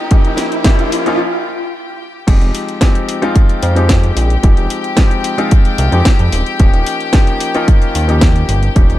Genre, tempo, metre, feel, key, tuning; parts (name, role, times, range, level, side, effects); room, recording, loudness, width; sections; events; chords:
nu-disco, nu disco; 111 BPM; 4/4; straight; F minor; A4 = 439 Hz
clear baby grand piano; accompaniment; 0.0-9.0 s; F3 to G4; -19 LUFS; left 2 dB; sidechain pumping, ping-pong delay
rich chamber string section; sustained chords; 0.0-9.0 s; G4 to G5; -23 LUFS; left 4 dB; sidechain pumping
riser; sound effects; 0.0-1.2 s; -20 LUFS; right 1 dB
electronic kick drum; drums; 0.1-8.9 s; -10 LUFS; equal
house drum kit; drums; 0.1-9.0 s; crash cymbal, hi-hat, snare drum; -20 LUFS; equal
fat analog bass; bass; 2.3-9.0 s; Eb1 to F2; -14 LUFS; equal
digital ambience; dark, warm production; -10 LUFS; side -14 dB against mid
0.0-2.3 A section; 2.3-9.0 B section
build-up 0.0-2.3; riser 0.0-1.2; break 1.2-2.3; drop 2.3-9.0
0.0 Eb7; 2.3 Fm7; 6.6 Eb7